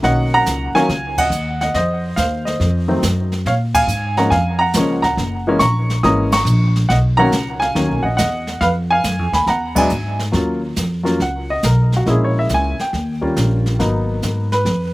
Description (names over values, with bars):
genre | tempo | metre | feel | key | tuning
jazz piano trio | 139 BPM | 4/4 | swing 68% on 8ths | Eb minor | A4 = 438 Hz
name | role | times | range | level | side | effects
warm baby grand piano | melody | 0.0-14.9 s | D#3 to Eb6 | -17 LUFS | equal | slapback echo
upright bass | bass | 0.0-14.9 s | Gb1 to Bb2 | -19 LUFS | equal | none
jazz brush drum kit | drums | 0.0-14.9 s | brushed snare drum, crash cymbal, hi-hat, kick drum, ride cymbal, snare drum | -25 LUFS | right 1 dB | none
room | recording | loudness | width
little or no reverb | recorded outdoors, with no room sound | -15 LUFS | side -19 dB against mid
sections
0.0-10.3 A section; 10.3-14.9 B section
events
band accent 1.1, 3.7, 6.2, 9.7; grand piano solo 10.3-14.9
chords
0.0 Bmaj9; 1.7 F7(no3); 3.5 Bbm7; 5.2 Gb7; 6.9 Bmaj9; 8.6 Fm7; 9.5 Eadd9; 10.3 Ebm9; 12.1 Bbm7b5; 12.9 Eb7; 13.8 Abm9